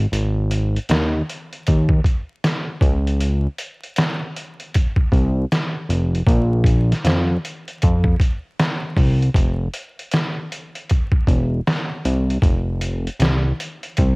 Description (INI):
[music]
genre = lo-fi hip hop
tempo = 78 BPM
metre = 4/4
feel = swing 63% on 16ths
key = unclear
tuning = A4 = 441 Hz
[part]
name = fat analog bass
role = bass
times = 0.0-14.2 s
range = E1 to F2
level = -18 LUFS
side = equal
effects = none
[part]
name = trip hop sampler-style drum kit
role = drums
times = 0.1-14.2 s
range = hi-hat, kick drum, snare drum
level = -19 LUFS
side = equal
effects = cassette tape
[sound]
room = little or no reverb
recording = home recording on cassette, vinyl crackle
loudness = -17 LUFS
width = side -32 dB against mid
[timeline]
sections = 0.0-9.3 A section; 9.3-14.2 B section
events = none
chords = none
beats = | 0.12 0.89 1.66 2.43 | 3.19 3.96 4.73 5.50 | 6.27 7.04 7.81 8.58 | 9.35 10.12 10.89 11.66 | 12.43 13.20 13.96